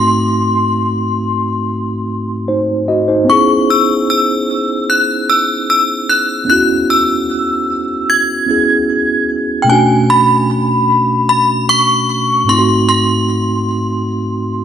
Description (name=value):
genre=R&B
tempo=75 BPM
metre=4/4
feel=straight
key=unclear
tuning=A4 = 443 Hz
part: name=synth chime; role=melody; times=0.0-14.6 s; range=G5 to G#6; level=-14 LUFS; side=left 1 dB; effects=ensemble chorus, phaser, digital delay
part: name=mellow tine electric piano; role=accompaniment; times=0.0-14.6 s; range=G#2 to D#5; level=-15 LUFS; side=right 1 dB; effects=medium stereo tremolo
room=wet recital hall reverb, RT60 1.4 s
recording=none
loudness=-11 LUFS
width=side -9 dB against mid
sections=0.0-14.6 A section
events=none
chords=0.0 G#7b9; 3.3 C#m7; 9.7 Bm9; 12.5 G#7b9